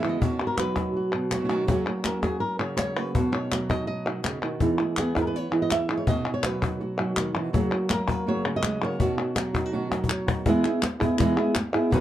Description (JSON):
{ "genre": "flamenco", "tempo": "164 BPM", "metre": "4/4", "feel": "straight", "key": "B major", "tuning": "A4 = 445 Hz", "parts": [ { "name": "flamenco guitar", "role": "melody", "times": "0.0-12.0 s", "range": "B2 to E5", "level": "-26 LUFS", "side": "right 1 dB", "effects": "none" }, { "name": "flamenco guitar", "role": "stabs", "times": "0.0-12.0 s", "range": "E2 to F#4", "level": "-30 LUFS", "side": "right 3 dB", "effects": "none" }, { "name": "palmas hand claps", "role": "percussion", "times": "0.0-11.9 s", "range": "none", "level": "-31 LUFS", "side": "left 3 dB", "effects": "none" }, { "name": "cajon", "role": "percussion", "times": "0.2-12.0 s", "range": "none", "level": "-28 LUFS", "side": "left 2 dB", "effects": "none" } ], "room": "moderate small room reverb, RT60 0.6 s", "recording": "dark, warm production", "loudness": "-23 LUFS", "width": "side -12 dB against mid", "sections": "0.0-10.5 A section; 10.5-12.0 B section", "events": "drum fill 9.9-10.5", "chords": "0.2 Badd9; 1.7 F#; 3.1 Badd9; 4.6 E; 6.1 Badd9; 7.5 F#; 9.0 Badd9; 10.5 E" }